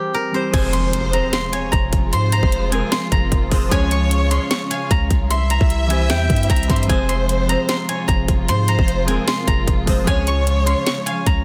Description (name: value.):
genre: hip hop, trap.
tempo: 151 BPM.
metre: 4/4.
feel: half-time.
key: F harmonic minor.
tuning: A4 = 439 Hz.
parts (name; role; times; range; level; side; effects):
steel-string zither; melody; 0.0-11.4 s; G4 to Db6; -26 LUFS; equal; digital delay.
glassy digital keys; accompaniment; 0.0-11.4 s; E3 to Db5; -27 LUFS; equal; chorus.
warm symphonic violin section; second line; 0.5-11.3 s; C5 to F5; -29 LUFS; equal; digital delay.
dark symphonic string section; sustained chords; 0.5-11.4 s; C3 to F4; -32 LUFS; equal; none.
long sustained 808-style bass; bass; 0.5-11.4 s; E1 to Ab2; -22 LUFS; equal; none.
trap drum kit; drums; 0.5-11.4 s; crash cymbal, hi-hat, kick drum, snare drum; -22 LUFS; equal; none.
impact; sound effects; 0.6-2.1 s; none; -31 LUFS; equal; none.
room: little or no reverb.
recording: dense, heavily limited modern master.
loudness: -18 LUFS.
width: mono.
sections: 0.5-11.4 A section.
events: break 0.0-0.5; impact 0.5-2.1.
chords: 0.0 C; 0.5 Fm; 3.7 Db; 5.3 C; 6.9 Fm; 10.1 Db.